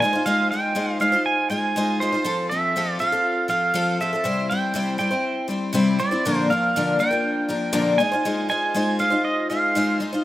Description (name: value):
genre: rock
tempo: 120 BPM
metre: 4/4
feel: straight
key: unclear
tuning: A4 = 441 Hz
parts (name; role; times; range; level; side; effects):
- pedal steel guitar; melody; 0.0-10.0 s; C5 to Ab5; -22 LUFS; right 2 dB; tape echo
- picked twelve-string acoustic guitar; accompaniment; 0.0-10.2 s; Bb2 to C5; -22 LUFS; left 2 dB; none
room: light reverb, small room ambience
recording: rough home demo mix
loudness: -19 LUFS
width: side -14 dB against mid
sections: 0.0-10.2 A section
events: none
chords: 0.0 Ab6; 2.3 F; 4.3 C; 6.3 Bb; 8.0 Ab6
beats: | 0.26 0.76 1.26 1.76 | 2.26 2.76 3.26 3.76 | 4.26 4.76 5.26 5.76 | 6.25 6.75 7.25 7.75 | 8.25 8.75 9.25 9.75